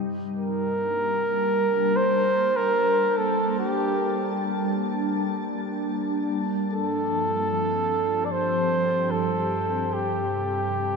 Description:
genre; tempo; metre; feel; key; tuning
ambient; 75 BPM; 4/4; straight; G minor; A4 = 441 Hz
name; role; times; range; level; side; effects
glassy FM pad; sustained chords; 0.0-11.0 s; G2 to A5; -26 LUFS; equal; ensemble chorus, built-in reverb
mellow flugelhorn; melody; 0.4-11.0 s; G4 to D5; -24 LUFS; right 1 dB; ping-pong delay
room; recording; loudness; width
wet huge ambient reverb, RT60 7.3 s; none; -22 LUFS; side -4 dB against mid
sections
0.4-11.0 A section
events
none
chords
0.4 Gm; 6.8 F/G; 10.0 C5/G

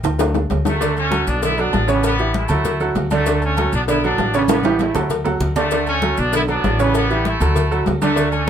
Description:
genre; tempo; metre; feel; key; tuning
latin, salsa; 196 BPM; 4/4; straight; D major; A4 = 440 Hz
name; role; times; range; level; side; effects
upright bass; bass; 0.0-8.5 s; A1 to D2; -21 LUFS; equal; none
congas; percussion; 0.0-8.5 s; none; -25 LUFS; left 2 dB; none
cowbell and bongos; percussion; 0.0-8.5 s; none; -26 LUFS; left 7 dB; none
maracas; percussion; 0.0-8.5 s; none; -36 LUFS; left 8 dB; none
timbales and agogo bells; percussion; 0.0-8.5 s; none; -27 LUFS; right 5 dB; none
bright upright piano; accompaniment; 0.2-8.5 s; C#3 to D5; -20 LUFS; right 4 dB; none
bright trumpet section; melody; 0.7-8.5 s; F#3 to E4; -22 LUFS; equal; none
room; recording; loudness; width
moderate studio ambience, RT60 0.5 s; minimal, uncompressed stereo recording; -16 LUFS; side -9 dB against mid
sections
0.8-8.5 A section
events
drum fill 0.0-0.8, 4.5-5.7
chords
0.2 D; 1.4 Bm7; 2.0 A7; 2.6 D; 3.9 Bm7; 4.5 A7; 5.1 D; 6.3 Bm7; 6.9 A7; 7.6 D

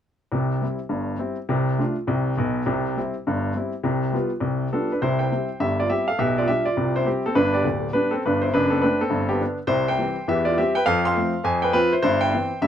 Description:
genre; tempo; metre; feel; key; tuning
jazz, stride piano; 205 BPM; 4/4; swing 65% on 8ths; C major; A4 = 440 Hz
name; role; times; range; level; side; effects
clear baby grand piano; solo; 0.3-12.7 s; D1 to C6; -20 LUFS; equal; none
room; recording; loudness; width
moderate booth ambience, RT60 0.3 s; none; -20 LUFS; side -9 dB against mid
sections
0.3-5.0 A section; 5.0-12.7 B section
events
none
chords
0.3 C; 1.5 Dm7/C; 2.7 C; 3.8 G7/C; 5.0 C; 6.2 G7/B; 6.8 C; 7.4 G; 8.5 D7/F#; 9.1 G; 9.7 C; 10.3 C/E; 10.9 F; 11.4 F5; 12.0 C/G

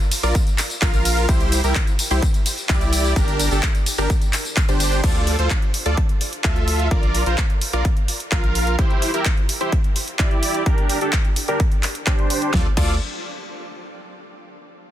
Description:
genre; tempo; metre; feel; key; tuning
EDM, festival progressive house; 128 BPM; 4/4; straight; D minor; A4 = 440 Hz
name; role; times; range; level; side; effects
big-room dance drum kit; drums; 0.0-12.9 s; crash cymbal, handclaps, hi-hat, ride cymbal, snare drum, tambourine; -25 LUFS; equal; overdrive, studio ambience
dense compressed supersaw; riff; 0.2-12.9 s; D4 to F5; -24 LUFS; right 1 dB; sidechain pumping, low-pass filter, tape echo
saturated sub bass; bass; 0.2-8.8, 12.5-13.0 s; G1 to D2; -21 LUFS; equal; sidechain pumping
electronic kick drum; drums; 0.3-12.9 s; none; -19 LUFS; equal; overdrive, studio ambience
room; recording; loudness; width
digital ambience; dense, heavily limited modern master; -17 LUFS; side -12 dB against mid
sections
0.0-5.0 A section; 5.0-12.5 B section; 12.5-14.4 C section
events
drop 0.0-5.0; filter sweep on supersaw synth 5.0-12.5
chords
0.0 Bb; 1.3 C; 3.2 Gm; 5.0 Dm; 6.9 Bb; 8.8 C; 10.7 Gm; 12.5 Dm

